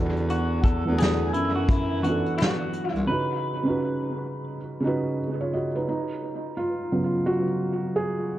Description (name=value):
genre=lo-fi hip hop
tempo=86 BPM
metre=4/4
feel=swing 64% on 16ths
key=unclear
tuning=A4 = 442 Hz
part: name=felt-muted upright piano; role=accompaniment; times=0.0-8.4 s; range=Db3 to Eb5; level=-26 LUFS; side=right 1 dB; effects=cassette tape, low-pass filter, analog delay
part: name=breathy bass clarinet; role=bass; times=0.0-3.1 s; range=C2 to F#2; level=-27 LUFS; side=left 1 dB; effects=none
part: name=vintage brush drum kit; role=drums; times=0.2-3.1 s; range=hi-hat, kick drum, snare drum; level=-25 LUFS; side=equal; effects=none
part: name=electric guitar through a small old amp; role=melody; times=0.3-4.4 s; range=E4 to Cb5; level=-30 LUFS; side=left 2 dB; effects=wide subtle chorus, low-pass filter, analog delay
part: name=finger snaps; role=percussion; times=1.0-2.6 s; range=none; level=barely audible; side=none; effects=none
room=light reverb, small room ambience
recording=echo-heavy mix, cassette tape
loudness=-23 LUFS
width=side -14 dB against mid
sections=0.0-5.9 A section; 5.9-8.4 B section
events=break 3.1-5.9; felt piano solo 5.9-8.4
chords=0.0 E9sus4; 3.1 Db9sus4